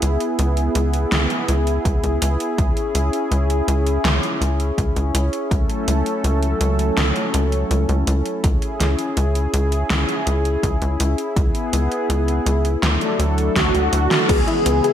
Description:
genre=synthwave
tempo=82 BPM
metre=4/4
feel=straight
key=C# phrygian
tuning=A4 = 441 Hz
part: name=warm analog pad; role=sustained chords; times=0.0-14.9 s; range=C#3 to A4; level=-22 LUFS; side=equal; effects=chorus, sidechain pumping
part: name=tight sequencer bass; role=bass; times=0.0-14.8 s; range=C#2 to D2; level=-19 LUFS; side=equal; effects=sidechain pumping
part: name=pop drum kit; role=drums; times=0.0-14.9 s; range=crash cymbal, hi-hat, snare drum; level=-23 LUFS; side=equal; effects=gated reverb
part: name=electronic kick drum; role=drums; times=1.9-14.4 s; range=none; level=-21 LUFS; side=equal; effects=none
part: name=mellow synth brass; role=melody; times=13.6-14.9 s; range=F#4 to G#4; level=-19 LUFS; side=right 1 dB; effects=chorus, phaser, digital delay
part: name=soft round pluck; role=arpeggios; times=14.3-14.9 s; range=B3 to G#4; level=-22 LUFS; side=left 4 dB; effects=chorus, digital delay
room=light reverb, digital ambience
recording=none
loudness=-17 LUFS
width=side -10 dB against mid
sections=0.0-14.3 A section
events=drum fill 13.6-14.3; band accent 14.1-14.5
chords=0.0 E/C#; 2.6 C#m; 5.5 F#m7/C#; 8.4 C#m; 11.4 E/C#; 12.8 Dadd9; 14.3 C#m7

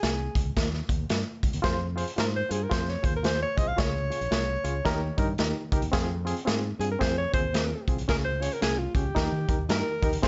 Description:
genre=uptempo 1960s-style soul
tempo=112 BPM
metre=4/4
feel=swing 61% on 8ths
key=F minor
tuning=A4 = 440 Hz
part: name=breathy alto saxophone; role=melody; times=0.0-10.2 s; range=F4 to F5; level=-33 LUFS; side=equal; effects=plate reverb
part: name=fingered electric bass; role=bass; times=0.0-10.3 s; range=Bb1 to Eb3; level=-34 LUFS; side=equal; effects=none
part: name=raw garage drum kit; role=drums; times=0.0-10.3 s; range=crash cymbal, hi-hat, kick drum, snare drum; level=-31 LUFS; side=equal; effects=none
part: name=barky reed electric piano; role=accompaniment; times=1.6-10.3 s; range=Db3 to Db5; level=-35 LUFS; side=equal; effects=overdrive, tremolo, plate reverb
room=light reverb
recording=nothing above 7.8 kHz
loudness=-28 LUFS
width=mono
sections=0.0-10.2 A section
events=none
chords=0.0 Db5; 0.6 N.C.; 1.6 Fm; 3.8 Db; 4.9 Eb; 5.9 Fm; 8.1 Db; 9.2 Eb

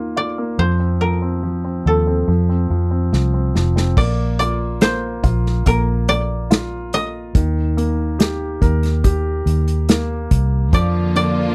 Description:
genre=pop ballad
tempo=71 BPM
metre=4/4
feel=straight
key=Bb major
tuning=A4 = 441 Hz
part: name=koto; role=melody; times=0.0-11.5 s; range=A4 to Eb5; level=-24 LUFS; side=equal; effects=none
part: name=clear baby grand piano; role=accompaniment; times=0.0-11.5 s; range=Eb3 to Bb4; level=-26 LUFS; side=equal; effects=none
part: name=vintage muted fingered electric bass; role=bass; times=0.0-11.5 s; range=F1 to F2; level=-21 LUFS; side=equal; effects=none
part: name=unplugged drum kit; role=drums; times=3.1-11.4 s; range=crash cymbal, hi-hat, kick drum, snare drum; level=-19 LUFS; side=equal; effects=none
part: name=clear studio string section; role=sustained chords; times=10.7-11.5 s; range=D3 to F4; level=-24 LUFS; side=equal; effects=none
room=little or no reverb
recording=dry, close 1970s-style studio recording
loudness=-18 LUFS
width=mono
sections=0.0-4.0 A section; 4.0-11.5 B section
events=drum fill 3.1-4.0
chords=0.0 Ebsus2; 0.6 Fsus4; 2.3 F5; 4.0 Bb; 7.3 Eb; 10.7 Bb/F

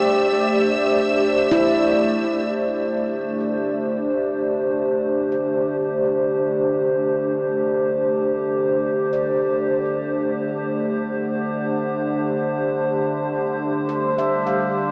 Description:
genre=ambient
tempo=free time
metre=none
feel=none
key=unclear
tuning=A4 = 443 Hz
part: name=warbly tape-like pad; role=sustained chords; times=0.0-14.9 s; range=G3 to D5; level=-22 LUFS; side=equal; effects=chorus, built-in reverb
part: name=handpan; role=arpeggios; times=0.0-14.9 s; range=E4 to F5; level=-27 LUFS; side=equal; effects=tape echo
part: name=bright symphonic violin section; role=texture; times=0.0-2.5 s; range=E5 to E6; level=-30 LUFS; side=equal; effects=none
part: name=overtone-sweeping drone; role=drone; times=3.1-14.9 s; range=D3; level=-33 LUFS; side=equal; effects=chorus, built-in reverb
room=wet huge ambient reverb, RT60 9.5 s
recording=small speaker sound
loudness=-21 LUFS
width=mono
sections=0.0-2.5 A section; 2.5-14.9 B section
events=fade-in on handpan 2.5-14.9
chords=0.0 C69; 8.2 Csus2; 13.9 Dm11

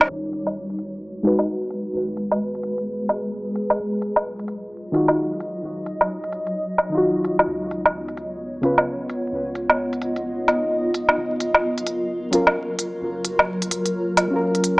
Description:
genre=future garage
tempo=130 BPM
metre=4/4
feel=swing 62% on 16ths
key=G# dorian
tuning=A4 = 440 Hz
part: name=granular cloud pad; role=sustained chords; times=0.0-14.8 s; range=F#3 to D#5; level=-25 LUFS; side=equal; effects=built-in reverb
part: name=soft 808-style bass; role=bass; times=0.0-14.8 s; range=D#1 to C#2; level=-44 LUFS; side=equal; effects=none
part: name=electronic woodblock and hi-hat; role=drums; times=0.0-14.8 s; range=none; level=-18 LUFS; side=equal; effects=none
part: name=muted felt-like synth keys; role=accompaniment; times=1.2-1.4, 4.9-8.8, 12.3-14.8 s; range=C#3 to B4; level=-22 LUFS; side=equal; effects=chorus, digital delay
room=wet recital hall reverb, RT60 1.6 s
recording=vinyl crackle, low-pass filter, small speaker sound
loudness=-20 LUFS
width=side -26 dB against mid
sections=0.1-14.8 A section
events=filter sweep on ambient pad 0.1-14.8; filter sweep 0.1-14.8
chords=0.1 G#m7; 3.8 D#madd9; 7.5 C#7; 11.2 F#maj7

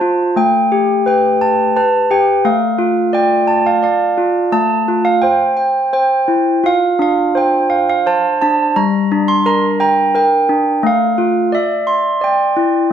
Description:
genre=children's music, lullaby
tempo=86 BPM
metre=3/4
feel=rubato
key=unclear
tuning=A4 = 444 Hz
part: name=handbells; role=solo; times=0.0-12.9 s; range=G3 to C6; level=-12 LUFS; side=right 1 dB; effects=none
room=light reverb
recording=close, detailed microphones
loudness=-12 LUFS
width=side -9 dB against mid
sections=0.0-12.9 A section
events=none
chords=0.4 Gadd9; 2.5 Dm; 4.5 F; 5.2 C; 6.6 Dm7; 8.8 Gm; 10.8 F; 11.5 Cadd9

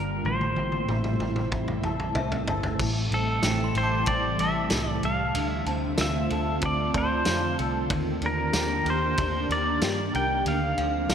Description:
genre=dream pop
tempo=94 BPM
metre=4/4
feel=straight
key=unclear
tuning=A4 = 440 Hz
part: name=pedal steel guitar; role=melody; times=0.0-11.1 s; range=A4 to G5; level=-28 LUFS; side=equal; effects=digital delay
part: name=ethereal airy pad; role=sustained chords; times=0.0-11.1 s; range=C3 to A4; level=-30 LUFS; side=right 1 dB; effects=ensemble chorus, built-in reverb
part: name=clean electric guitar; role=arpeggios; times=0.0-11.1 s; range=A2 to Bb4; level=-31 LUFS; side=left 2 dB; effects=ensemble chorus, digital delay
part: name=vintage muted fingered electric bass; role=bass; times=0.0-11.1 s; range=G1 to G2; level=-31 LUFS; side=equal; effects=none
part: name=loose indie drum kit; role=drums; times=0.2-11.1 s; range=crash cymbal, kick drum, ride cymbal, snare drum, tambourine, toms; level=-31 LUFS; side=equal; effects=none
part: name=synth chime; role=texture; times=2.2-11.1 s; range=D5 to D6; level=-38 LUFS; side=right 2 dB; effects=ensemble chorus, digital delay
room=wet lush hall reverb, RT60 2.4 s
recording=bright 1980s-style digital production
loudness=-23 LUFS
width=side -8 dB against mid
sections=0.0-2.8 A section; 2.8-11.1 B section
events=drum fill 0.2-2.8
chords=0.2 Am7; 5.4 Dm7; 7.9 Ebmaj7; 10.5 Dm7

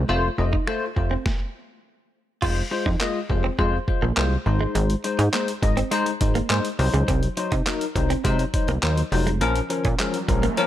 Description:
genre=dance-pop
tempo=103 BPM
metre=4/4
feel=straight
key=unclear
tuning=A4 = 439 Hz
part: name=direct-recorded clean electric guitar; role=riff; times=0.0-10.7 s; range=Ab3 to F4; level=-29 LUFS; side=right 5 dB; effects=lush chorus
part: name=plucky analog bass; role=bass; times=0.0-10.5 s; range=F1 to C3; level=-22 LUFS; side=equal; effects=sidechain pumping
part: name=barky tine electric piano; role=accompaniment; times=0.1-10.7 s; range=F3 to Eb5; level=-26 LUFS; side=left 5 dB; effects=lush chorus, sidechain pumping
part: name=boom bap sampler-style drum kit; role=drums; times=0.5-10.7 s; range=crash cymbal, finger snaps, handclaps, hi-hat, kick drum, snare drum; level=-26 LUFS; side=equal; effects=none
part: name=riser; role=sound effects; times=9.8-10.7 s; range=none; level=-30 LUFS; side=right 3 dB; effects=none
room=little or no reverb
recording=none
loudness=-20 LUFS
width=side -12 dB against mid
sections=0.0-2.4 A section; 2.4-10.7 B section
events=stop 1.3-2.4; riser 9.8-10.7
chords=0.1 F; 2.4 Fm; 4.5 Ab; 6.8 Cdim; 9.4 Bbm

